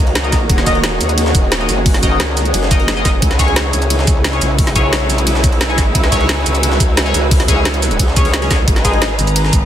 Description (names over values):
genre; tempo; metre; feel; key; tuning
dark technical drum and bass; 176 BPM; 4/4; straight; unclear; A4 = 437 Hz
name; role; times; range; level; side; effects
dark studio string section; sustained chords; 0.0-9.7 s; Db3 to Bb5; -22 LUFS; right 1 dB; sidechain pumping
band-passed chord stab; stabs; 0.0-9.7 s; Ab3 to Eb5; -21 LUFS; left 3 dB; chorus, phaser, digital delay
growl bass; bass; 0.0-9.2 s; Eb1 to Eb2; -18 LUFS; equal; chorus, overdrive
granular cloud pad; texture; 0.0-9.7 s; Gb4 to Fb6; -23 LUFS; equal; built-in reverb, sidechain pumping
jungle sampler-style drum kit; drums; 0.1-9.6 s; hi-hat, ride cymbal, snare drum; -24 LUFS; equal; overdrive, high-pass filter on cymbals, high-pass filter on snare, high-pass filter on hats, high-pass filter on room
drum and bass drum kit; drums; 0.2-9.6 s; hi-hat, shaker, snare drum; -18 LUFS; right 1 dB; overdrive
electronic kick drum; drums; 0.3-9.6 s; none; -14 LUFS; equal; overdrive
growling FM bass; bass; 9.2-9.7 s; Ab1; -15 LUFS; equal; none
room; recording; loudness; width
light reverb, digital ambience; dense, heavily limited modern master; -11 LUFS; side -10 dB against mid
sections
0.0-9.7 A section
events
none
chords
0.0 Ebm; 3.2 Dbm; 8.7 Abm